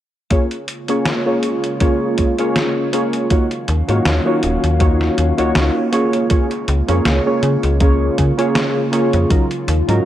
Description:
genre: vaporwave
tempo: 80 BPM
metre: 4/4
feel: swing 55% on 16ths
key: Db major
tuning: A4 = 441 Hz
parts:
  - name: warbly lo-fi synth keys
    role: accompaniment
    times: 0.3-10.1 s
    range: Gb3 to Db5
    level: -17 LUFS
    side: equal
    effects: wide subtle chorus, vintage 12-bit sampler grit, tape echo
  - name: warbly tape-like pad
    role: sustained chords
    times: 0.7-10.1 s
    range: Db3 to F5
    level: -24 LUFS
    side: right 1 dB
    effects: chorus, built-in reverb
  - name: detuned 8-bit digital drum machine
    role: drums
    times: 0.3-10.0 s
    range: hi-hat, snare drum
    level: -22 LUFS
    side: equal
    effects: none
  - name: electronic kick drum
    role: drums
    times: 0.3-9.5 s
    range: none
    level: -16 LUFS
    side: equal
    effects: none
  - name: slap-like FM bass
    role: bass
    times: 3.7-10.0 s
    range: Eb1 to Db3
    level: -17 LUFS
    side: equal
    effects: none
room: light reverb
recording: cassette tape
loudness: -14 LUFS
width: side -12 dB against mid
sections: 0.3-6.3 A section; 6.3-10.1 B section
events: kick drops out 5.6-6.3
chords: 0.3 Db6; 3.3 Ebm9; 5.9 Db6; 9.3 Ebm9

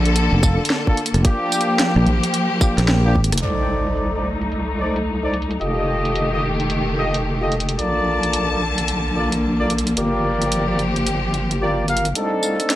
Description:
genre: glitch hop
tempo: 110 BPM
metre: 4/4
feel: swing 63% on 16ths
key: C dorian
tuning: A4 = 440 Hz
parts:
  - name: clear symphonic string section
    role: sustained chords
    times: 0.0-12.8 s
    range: D3 to A5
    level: -23 LUFS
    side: left 1 dB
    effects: vintage 12-bit sampler grit, sidechain pumping, low-pass filter
  - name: wobble bass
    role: bass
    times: 0.0-12.6 s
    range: F1 to C2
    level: -23 LUFS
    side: equal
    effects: chorus, high-pass filter
  - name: drum and bass drum kit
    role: drums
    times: 0.1-12.8 s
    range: hi-hat, rim click, snare drum, tambourine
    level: -23 LUFS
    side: right 1 dB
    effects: high-pass filter on hats, low-pass filter on hats, small room ambience, high-pass filter on perc, low-pass filter on perc, high-pass filter on snare, low-pass filter on snare
  - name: fingered electric bass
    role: bass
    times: 0.3-3.3 s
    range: F1 to Bb1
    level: -17 LUFS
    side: equal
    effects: none
  - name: warm horn section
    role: stabs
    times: 0.4-12.8 s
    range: Bb3 to F5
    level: -23 LUFS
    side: equal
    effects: sidechain pumping, low-pass filter, tape echo
  - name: electronic kick drum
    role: drums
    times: 0.4-3.3 s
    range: none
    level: -17 LUFS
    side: equal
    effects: small room ambience
  - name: impact and riser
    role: sound effects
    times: 3.4-5.6, 12.6-12.8 s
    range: none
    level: -29 LUFS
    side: equal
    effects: none
room: digital ambience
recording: dry, gritty hardware recording, transformer saturation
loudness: -17 LUFS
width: side -14 dB against mid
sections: 0.0-3.4 A section; 3.4-12.2 B section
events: band accent 2.9; drum fill 3.2; impact 3.4-5.6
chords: 0.0 Bbmaj7; 1.2 Gm7; 3.4 Cm69; 5.6 F9; 7.8 Bbmaj7; 10.0 Gm7; 12.2 Cm69

